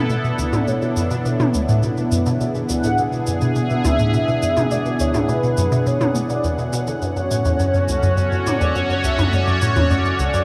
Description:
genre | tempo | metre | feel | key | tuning
ambient, sequencer-driven space music | 104 BPM | 4/4 | straight | B dorian | A4 = 440 Hz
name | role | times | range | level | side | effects
mellow horn-like synth lead | melody | 0.0-10.4 s | B4 to F#5 | -27 LUFS | equal | analog chorus, tape echo
sweeping resonant pad | sustained chords | 0.0-10.4 s | B3 to F#5 | -24 LUFS | equal | chorus
resonant blip pluck | riff | 0.1-10.4 s | C#2 to D3 | -22 LUFS | equal | phaser, tape echo
electronic cabasa and toms | percussion | 0.1-10.4 s | none | -30 LUFS | equal | tape echo
room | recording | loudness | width
wet huge ambient reverb, RT60 7.9 s | cassette tape | -19 LUFS | mono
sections
0.0-10.4 A section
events
none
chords
0.0 Bm; 7.0 F#m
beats
| 0.10 0.68 1.25 1.83 | 2.41 2.98 3.56 4.14 | 4.72 5.29 5.87 6.45 | 7.02 7.60 8.18 8.75 | 9.33 9.91

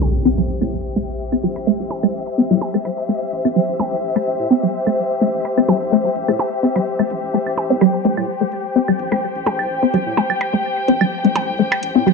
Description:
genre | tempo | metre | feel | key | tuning
minimal techno | 127 BPM | 4/4 | swing 54% on 16ths | A minor | A4 = 442 Hz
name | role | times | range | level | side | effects
saturated sub bass | bass | 0.0-12.0 s | A1 to A2 | -32 LUFS | equal | high-pass filter
electronic hi-hat | drums | 0.0-11.9 s | none | -40 LUFS | right 2 dB | none
percussion blips and claves | percussion | 0.0-11.8 s | none | -23 LUFS | right 4 dB | digital delay
impact | sound effects | 0.0-1.7 s | none | -22 LUFS | equal | none
rich studio string section | texture | 0.0-12.1 s | G4 to G5 | -22 LUFS | left 2 dB | none
resonant blip pluck | riff | 0.3-12.1 s | G3 to C4 | -17 LUFS | left 1 dB | phaser, wide subtle chorus, digital delay
room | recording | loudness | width
moderate digital room reverb, RT60 1.3 s, digital ambience | dark, warm production, low-pass filter | -16 LUFS | side -4 dB against mid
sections
0.0-12.1 A section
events
impact 0.0-1.7; filter sweep 0.0-12.1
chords
0.0 Am7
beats
0.25 0.72 1.20 | 1.67 2.14 2.62 3.09 | 3.56 4.03 4.50 4.98 | 5.45 5.92 6.39 6.87 | 7.34 7.81 8.28 8.76 | 9.23 9.70 10.17 10.65 | 11.12 11.59 12.06

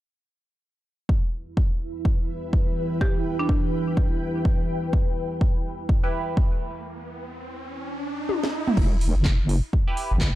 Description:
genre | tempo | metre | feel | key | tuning
bass house | 125 BPM | 4/4 | swing 60% on 16ths | E minor | A4 = 442 Hz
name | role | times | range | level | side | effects
dark analog pad | sustained chords | 1.1-8.7 s | E3 to B4 | -32 LUFS | right 1 dB | chorus, sidechain pumping
electronic kick drum | drums | 1.1-10.3 s | none | -22 LUFS | equal | studio reverb
ethereal airy pad | texture | 1.9-6.9 s | E4 to G5 | -34 LUFS | equal | ensemble chorus, built-in reverb, phaser, sidechain pumping
buzzing marimba with hard mallets | melody | 3.0-4.1 s | D4 to G4 | -31 LUFS | equal | digital delay
riser | sound effects | 6.6-8.8 s | none | -33 LUFS | right 2 dB | none
band-passed chord stab | stabs | 6.0-6.9, 9.9-10.4 s | E4 to B4 | -31 LUFS | right 2 dB | phaser, sidechain pumping, digital delay
house drum kit | drums | 8.3-10.3 s | crash cymbal, handclaps, hi-hat, snare drum, toms | -27 LUFS | equal | studio reverb
wobble bass | bass | 8.8-10.3 s | E1 to G1 | -21 LUFS | equal | chorus, tube saturation, sidechain pumping
room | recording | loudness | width
little or no reverb | dark, warm production | -22 LUFS | side -15 dB against mid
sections
1.1-8.8 A section; 8.8-10.4 B section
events
riser 6.6-8.8; break 6.9-8.8; drum fill 8.3-8.8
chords
1.1 Em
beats
| 1.09 1.57 2.05 2.53 | 3.01 3.49 3.97 4.45 | 4.93 5.41 5.89 6.37 | 6.85 7.33 7.81 8.29 | 8.77 9.25 9.73 10.21

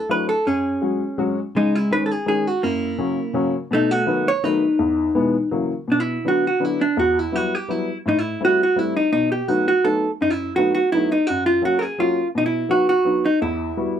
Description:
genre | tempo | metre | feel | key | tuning
musette waltz | 167 BPM | 3/4 | straight | unclear | A4 = 437 Hz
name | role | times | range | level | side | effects
vintage hollow-body jazz guitar | melody | 0.0-14.0 s | G#3 to C#5 | -19 LUFS | right 1 dB | none
warm upright piano | accompaniment | 0.1-14.0 s | E2 to F#4 | -23 LUFS | left 2 dB | none
room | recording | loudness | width
moderate small room ambience, RT60 0.5 s | close, detailed microphones | -18 LUFS | side -9 dB against mid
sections
0.0-5.9 A section; 5.9-14.0 B section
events
none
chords
0.5 F#sus2; 1.6 C#sus2; 2.6 F#; 3.7 B7; 4.8 E; 5.5 F#7; 5.9 Bm; 7.0 Emadd9; 8.1 Am7; 9.1 B7; 11.3 F#; 12.4 B; 13.4 Emadd9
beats
0.10 | 0.46 0.83 1.19 | 1.56 1.92 2.28 | 2.64 3.00 3.36 | 3.72 4.08 4.44 | 4.80 5.16 5.53 | 5.89 6.25 6.62 | 6.98 7.34 7.70 | 8.05 8.41 8.77 | 9.13 9.49 9.85 | 10.21 10.57 10.93 | 11.29 11.65 12.00 | 12.36 12.71 13.07 | 13.43 13.79

